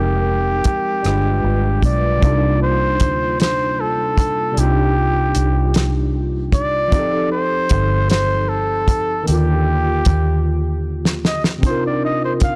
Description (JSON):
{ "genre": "slow six-eight R&B", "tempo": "51 BPM (dotted quarters)", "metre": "6/8", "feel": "straight", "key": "C dorian", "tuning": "A4 = 441 Hz", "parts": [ { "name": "warm flugelhorn", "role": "melody", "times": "0.0-12.6 s", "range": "G4 to F5", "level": "-23 LUFS", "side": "equal", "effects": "none" }, { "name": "barky tine electric piano", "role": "accompaniment", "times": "0.0-12.6 s", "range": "C3 to B4", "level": "-24 LUFS", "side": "equal", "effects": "overdrive, ensemble chorus" }, { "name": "vintage muted fingered electric bass", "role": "bass", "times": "0.0-12.6 s", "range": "F1 to Eb2", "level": "-21 LUFS", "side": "equal", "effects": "transformer saturation" }, { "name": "damped 70s drum kit", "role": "drums", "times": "0.6-12.6 s", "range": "hi-hat, kick drum, rim click, snare drum", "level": "-20 LUFS", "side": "equal", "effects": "soft clipping on snare" } ], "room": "studio reverb", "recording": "blown-out, overdriven recording, overdrive", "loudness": "-18 LUFS", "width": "mono", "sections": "0.0-2.2 A section; 2.2-12.6 B section", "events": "drum fill 10.5-11.6", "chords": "0.0 Fm11; 1.0 G7b9; 2.2 Cm11; 6.9 F9; 9.3 Ebmaj9; 11.6 Cm11", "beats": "1.04 | 2.22 3.40 | 4.57 5.75 | 6.93 8.10 | 9.28 10.46 | 11.63" }